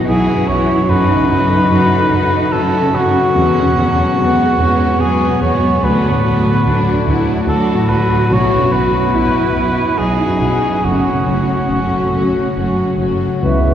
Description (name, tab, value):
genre	cinematic, emotional film score for orchestra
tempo	72 BPM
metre	3/4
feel	rubato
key	unclear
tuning	A4 = 440 Hz
part	rich studio violin section	second line	0.0-13.4 s	A3 to F#4	-22 LUFS	left 4 dB	none
part	dark concert grand piano	accompaniment	0.0-13.7 s	B1 to B4	-18 LUFS	left 1 dB	none
part	rich studio viola section	accompaniment	0.0-13.4 s	E3 to B3	-21 LUFS	right 1 dB	none
part	rich studio cello section	bass	0.0-13.0 s	B3 to F#4	-21 LUFS	right 1 dB	none
part	warm cor anglais	second line	0.1-13.7 s	F#4 to C#5	-17 LUFS	equal	none
part	rich studio double bass section	bass	0.1-13.7 s	F#1 to F#2	-20 LUFS	right 1 dB	none
part	bright clarinet	second line	13.4-13.7 s	B4	-24 LUFS	left 2 dB	none
part	mellow large flute ensemble	second line	13.4-13.7 s	E5	-20 LUFS	right 1 dB	none
part	mellow French horn section	sustained chords	13.4-13.7 s	B3 to E4	-20 LUFS	left 5 dB	none
room	wet cathedral reverb, RT60 5.9 s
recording	heard from further back in the room, faint mains hum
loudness	-12 LUFS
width	side -10 dB against mid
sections	0.0-13.4 A section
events	none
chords	0.0 Bsus4; 0.9 F#m; 3.4 Eadd9; 5.8 D; 8.3 Bsus4; 10.8 F#m